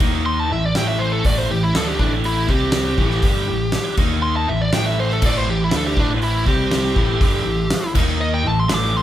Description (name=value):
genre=hard rock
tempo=121 BPM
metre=4/4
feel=straight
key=unclear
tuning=A4 = 440 Hz
part: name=scooped high-gain guitar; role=riff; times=0.0-9.0 s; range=G2 to D#4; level=-25 LUFS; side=right 7 dB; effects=distortion
part: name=sludgy distorted guitar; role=riff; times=0.0-9.0 s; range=G2 to D#4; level=-25 LUFS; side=left 4 dB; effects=overdrive
part: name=overdriven picked electric bass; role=bass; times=0.0-9.0 s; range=G1 to D#2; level=-23 LUFS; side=equal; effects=none
part: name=gated 80s drum kit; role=drums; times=0.0-8.8 s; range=crash cymbal, hi-hat, kick drum, snare drum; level=-21 LUFS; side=equal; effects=none
part: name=bluesy overdriven lead guitar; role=melody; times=0.3-9.0 s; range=D4 to D6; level=-22 LUFS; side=left 1 dB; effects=distortion
part: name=tonewheel organ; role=sustained chords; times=5.2-9.0 s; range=E4 to D#6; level=-34 LUFS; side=equal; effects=none
room=moderate large studio reverb, RT60 1.5 s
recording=band playing live in one room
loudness=-16 LUFS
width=side -12 dB against mid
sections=0.0-9.0 A section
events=lead electric guitar solo 0.0-9.0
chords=0.0 D#5; 0.5 A5; 2.5 C5; 3.0 A5; 4.0 D#5; 4.5 Am; 6.5 C5; 7.0 Am; 8.0 D#5; 8.4 Am